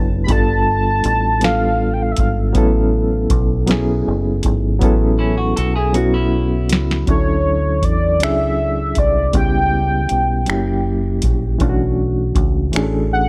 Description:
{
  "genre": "slow six-eight R&B",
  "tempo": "53 BPM (dotted quarters)",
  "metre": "6/8",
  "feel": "straight",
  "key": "A major",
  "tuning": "A4 = 440 Hz",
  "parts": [
    { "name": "reed electric piano", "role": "accompaniment", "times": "0.0-13.3 s", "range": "E3 to B4", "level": "-22 LUFS", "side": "equal", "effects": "fast tremolo" },
    { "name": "deep dub fingered electric bass", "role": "bass", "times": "0.0-13.3 s", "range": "F#1 to E2", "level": "-22 LUFS", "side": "equal", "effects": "none" },
    { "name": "warm velvety synth lead", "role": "melody", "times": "0.2-2.3, 7.1-13.3 s", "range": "C#5 to B5", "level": "-22 LUFS", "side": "equal", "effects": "chorus, tape echo" },
    { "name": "booming analog drum machine", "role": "drums", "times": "0.3-12.9 s", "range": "finger snaps, hi-hat, kick drum, snare drum", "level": "-22 LUFS", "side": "equal", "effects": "none" },
    { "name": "clean electric guitar", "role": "second line", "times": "5.2-7.0 s", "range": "C#4 to A4", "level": "-26 LUFS", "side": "equal", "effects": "none" }
  ],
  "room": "light reverb, digital ambience",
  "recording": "none",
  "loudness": "-17 LUFS",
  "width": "mono",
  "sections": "0.0-7.1 A section; 7.1-13.3 B section",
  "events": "drum fill 4.8-7.1",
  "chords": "0.3 G9; 2.5 A69; 7.1 Dmaj9; 9.3 C#m7b5; 10.5 F#7b9; 11.6 Bm11",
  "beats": "| 0.28 1.42 | 2.55 3.68 | 4.81 5.94 | 7.08 8.21 | 9.34 10.47 | 11.61 12.74"
}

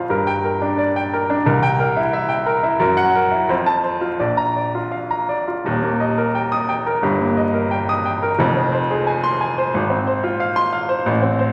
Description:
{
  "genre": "classical, virtuoso piano study",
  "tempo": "88 BPM",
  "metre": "2/4",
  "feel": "rubato",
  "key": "Bb major, Eb major from 5.7 s",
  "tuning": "A4 = 441 Hz",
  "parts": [
    { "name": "warm baby grand piano", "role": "solo", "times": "0.0-11.5 s", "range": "Eb1 to Eb6", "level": "-19 LUFS", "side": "equal", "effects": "none" }
  ],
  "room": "wet concert hall reverb, RT60 1.9 s",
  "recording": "vinyl crackle",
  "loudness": "-19 LUFS",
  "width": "mono",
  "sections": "0.0-5.7 A section; 5.7-11.5 B section",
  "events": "none",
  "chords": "0.1 Gm; 1.5 C7; 2.8 Gb7; 3.5 F; 4.2 Bb; 5.7 Eb; 7.0 Eb/G; 8.4 Fm; 9.7 Fm/Ab",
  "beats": "| 0.10 0.78 | 1.45 2.12 | 2.80 3.49 | 4.21 4.94 | 5.67 6.35 | 7.04 7.72 | 8.40 9.07 | 9.74 10.40 | 11.06"
}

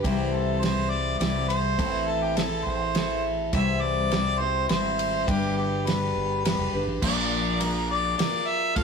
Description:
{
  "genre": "folk rock and heartland rock",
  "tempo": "103 BPM",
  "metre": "3/4",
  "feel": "straight",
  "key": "C major",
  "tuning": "A4 = 441 Hz",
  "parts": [
    { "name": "warm harmonica", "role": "melody", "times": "0.0-8.8 s", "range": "G4 to F5", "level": "-28 LUFS", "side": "equal", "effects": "none" },
    { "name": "picked steel-string acoustic guitar", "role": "accompaniment", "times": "0.0-8.8 s", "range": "A2 to C5", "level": "-27 LUFS", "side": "left 2 dB", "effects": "none" },
    { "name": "mellow fretless electric bass", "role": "bass", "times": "0.0-8.8 s", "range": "F1 to C2", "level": "-30 LUFS", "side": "equal", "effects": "none" },
    { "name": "damped 70s drum kit", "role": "drums", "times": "0.0-8.8 s", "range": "crash cymbal, kick drum, ride cymbal, snare drum", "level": "-30 LUFS", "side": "right 2 dB", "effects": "none" }
  ],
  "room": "moderate studio reverb, RT60 0.5 s",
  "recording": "rough rehearsal-room recording, tube saturation",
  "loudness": "-23 LUFS",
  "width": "side -6 dB against mid",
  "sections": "0.0-7.0 A section; 7.0-8.8 B section",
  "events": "none",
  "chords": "0.0 C; 1.8 Am; 3.5 C; 5.3 G; 7.0 Bb",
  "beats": "| 0.05 0.63 1.21 | 1.79 2.38 2.96 | 3.54 4.12 4.70 | 5.28 5.86 6.44 | 7.02 7.60 8.18 | 8.76"
}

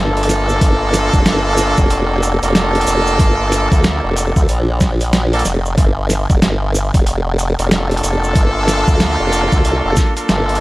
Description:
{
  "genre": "glitch hop",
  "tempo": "93 BPM",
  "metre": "4/4",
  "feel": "swing 62% on 16ths",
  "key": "G minor",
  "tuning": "A4 = 440 Hz",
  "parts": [
    { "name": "bright horn section", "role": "stabs", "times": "0.0-10.6 s", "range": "Bb3 to A4", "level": "-18 LUFS", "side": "equal", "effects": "sidechain pumping, dub echo" },
    { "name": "formant-sweep wobble bass", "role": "bass", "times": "0.0-10.6 s", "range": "F1 to D2", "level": "-16 LUFS", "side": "equal", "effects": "chorus" },
    { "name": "boom bap sampler-style drum kit", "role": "drums", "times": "0.2-10.6 s", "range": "hi-hat, snare drum", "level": "-18 LUFS", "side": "right 1 dB", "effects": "overdrive, studio ambience" },
    { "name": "tube shaker", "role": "percussion", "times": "0.3-10.4 s", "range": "none", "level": "-28 LUFS", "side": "right 2 dB", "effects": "none" },
    { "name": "electronic kick drum", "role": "drums", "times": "0.6-10.1 s", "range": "none", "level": "-14 LUFS", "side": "equal", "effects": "studio ambience" }
  ],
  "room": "little or no reverb",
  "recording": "vinyl crackle",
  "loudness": "-12 LUFS",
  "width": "side -19 dB against mid",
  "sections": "0.0-10.6 A section",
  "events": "none",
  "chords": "0.0 Gm9",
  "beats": "| 0.61 1.26 1.91 2.55 | 3.20 3.84 4.49 5.13 | 5.78 6.42 7.07 7.71 | 8.36 9.00 9.65 10.29"
}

